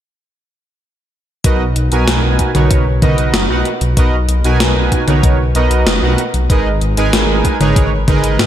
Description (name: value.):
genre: synthwave.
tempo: 95 BPM.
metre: 4/4.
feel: straight.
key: B major.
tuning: A4 = 440 Hz.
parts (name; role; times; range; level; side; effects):
analog synth brass; stabs; 1.4-8.5 s; B2 to G#5; -16 LUFS; right 2 dB; chorus, digital delay.
dark detuned saw bass; bass; 1.4-8.5 s; F#1 to G#2; -15 LUFS; equal; none.
electronic kick drum; drums; 1.4-8.2 s; none; -14 LUFS; equal; none.
gated 80s digital drum machine; drums; 1.4-8.5 s; hi-hat, snare drum, toms; -17 LUFS; equal; gated reverb, gated reverb snare.
room: light reverb, digital ambience.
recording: none.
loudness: -11 LUFS.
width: side -11 dB against mid.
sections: 1.4-8.5 A section.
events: none.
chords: 1.4 Bmaj7.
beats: | 1.45 2.08 2.71 3.34 | 3.97 4.60 5.24 5.87 | 6.50 7.13 7.76 8.39.